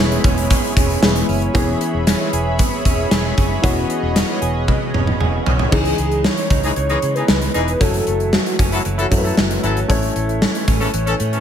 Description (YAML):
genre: 1980s-style pop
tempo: 115 BPM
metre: 4/4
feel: straight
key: unclear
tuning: A4 = 440 Hz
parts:
  - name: wide unison lead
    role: melody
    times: 0.0-1.0, 5.7-8.9 s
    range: F#4 to C#5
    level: -24 LUFS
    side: equal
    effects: tape echo
  - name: warm baby grand piano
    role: accompaniment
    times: 0.0-11.4 s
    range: E3 to C#5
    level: -24 LUFS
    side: left 3 dB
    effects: none
  - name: lush unison pad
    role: sustained chords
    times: 0.0-5.7 s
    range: E4 to B5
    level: -25 LUFS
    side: left 1 dB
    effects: chorus
  - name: direct-recorded clean electric guitar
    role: riff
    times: 0.0-11.4 s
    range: E3 to G#4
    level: -26 LUFS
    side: right 8 dB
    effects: wide subtle chorus, tape echo
  - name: vintage muted fingered electric bass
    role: bass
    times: 0.0-11.4 s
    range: E1 to C#3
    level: -22 LUFS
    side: equal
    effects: none
  - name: gated 80s drum kit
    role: drums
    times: 0.1-11.4 s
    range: crash cymbal, hi-hat, kick drum, snare drum, tambourine, toms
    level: -18 LUFS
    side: equal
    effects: none
  - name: warm horn section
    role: stabs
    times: 6.6-11.4 s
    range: E3 to A4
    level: -24 LUFS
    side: left 3 dB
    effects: none
room: light reverb, studio reverb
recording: none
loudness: -15 LUFS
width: side -9 dB against mid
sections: 0.0-1.5 A section; 1.5-5.7 B section; 5.7-11.4 C section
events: drum fill 4.7-5.7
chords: 0.0 E6; 5.7 C#madd9; 7.8 F#m7; 9.9 A